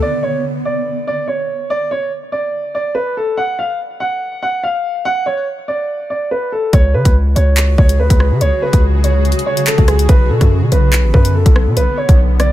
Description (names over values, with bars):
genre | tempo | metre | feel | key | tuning
hip hop, drill | 143 BPM | 4/4 | half-time | unclear | A4 = 440 Hz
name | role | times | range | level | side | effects
dark concert grand piano | melody | 0.0-12.5 s | G#4 to F#5 | -18 LUFS | right 1 dB | digital delay
granular cloud pad | sustained chords | 7.7-12.5 s | C#3 to G#4 | -22 LUFS | equal | built-in reverb
distorted 808-style bass | bass | 6.7-12.5 s | A1 to C#3 | -12 LUFS | equal | distortion
drill drum kit | drums | 6.7-12.5 s | handclaps, hi-hat, kick drum, rim click | -12 LUFS | equal | none
room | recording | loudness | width
little or no reverb | none | -12 LUFS | side -14 dB against mid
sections
0.0-12.5 A section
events
none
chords
0.0 N.C.; 6.7 C#sus4; 10.1 Bm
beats
| 0.02 0.44 0.86 1.28 | 1.70 2.12 2.54 2.96 | 3.38 3.79 4.21 4.63 | 5.05 5.47 5.89 6.31 | 6.73 7.15 7.57 7.99 | 8.41 8.83 9.25 9.67 | 10.09 10.51 10.93 11.35 | 11.77 12.19